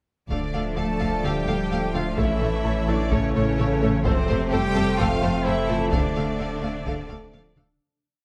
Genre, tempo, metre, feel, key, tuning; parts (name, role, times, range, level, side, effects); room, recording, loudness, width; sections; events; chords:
cinematic, hybrid orchestral and electronic film score; 128 BPM; 4/4; straight; D minor; A4 = 440 Hz
rich cello; melody; 0.3-7.5 s; C4 to A4; -33 LUFS; equal; digital delay
warm symphonic violin section; melody; 0.3-7.6 s; C5 to F5; -39 LUFS; equal
warm symphonic violin section; second line; 0.3-7.5 s; C5 to A5; -35 LUFS; equal
rich studio viola section; accompaniment; 0.3-7.6 s; A3 to A4; -34 LUFS; equal
bright trombone section; sustained chords; 0.3-7.5 s; C3 to A3; -35 LUFS; equal
mellow French horn section; sustained chords; 0.3-7.6 s; A3 to A4; -36 LUFS; equal
warm analog pad; sustained chords; 0.3-7.8 s; C3 to D5; -33 LUFS; equal; chorus
glassy wavetable pluck; arpeggios; 0.3-7.7 s; D3 to A4; -37 LUFS; equal
pure sine sub bass; bass; 0.3-7.8 s; D1 to A1; -33 LUFS; equal
rich studio cello section; bass; 0.3-7.6 s; C3 to A3; -32 LUFS; equal
rich studio double bass section; bass; 0.3-7.6 s; A1 to F2; -33 LUFS; equal
taiko ensemble; drums; 0.3-7.8 s; -31 LUFS; equal
bright baby grand piano; texture; 1.0-7.8 s; A4 to A5; -41 LUFS; equal
moderate scoring stage reverb, RT60 1.7 s; -23 LUFS; mono
0.3-7.8 theme
fade-out 5.9-7.8
0.3 Dm; 2.2 A; 4.1 F; 5.9 Dm